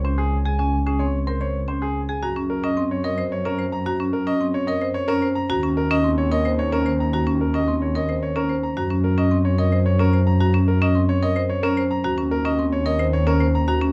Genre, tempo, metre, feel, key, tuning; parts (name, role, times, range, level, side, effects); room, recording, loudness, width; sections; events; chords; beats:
classical, minimalist pattern music; 110 BPM; 3/4; straight; Gb lydian; A4 = 440 Hz
clear grand piano; melody; 0.0-13.9 s; Ab4 to Bb5; -28 LUFS; equal
marimba with hard mallets; arpeggios; 0.0-13.9 s; C4 to C5; -25 LUFS; equal
dark studio double bass section; bass; 0.0-13.9 s; Db2 to Gb2; -25 LUFS; equal
light reverb; dark, warm production; -21 LUFS; mono
0.0-2.2 A section; 2.2-13.9 B section
0.0 Db5; 2.2 Gb6; 5.5 Eb7(no3); 8.8 Gb6; 12.0 Ebm7
0.04 | 0.59 1.14 1.68 | 2.23 2.77 3.32 | 3.86 4.41 4.95 | 5.50 6.04 6.59 | 7.13 7.68 8.23 | 8.77 9.32 9.86 | 10.41 10.95 11.50 | 12.04 12.59 13.13 | 13.68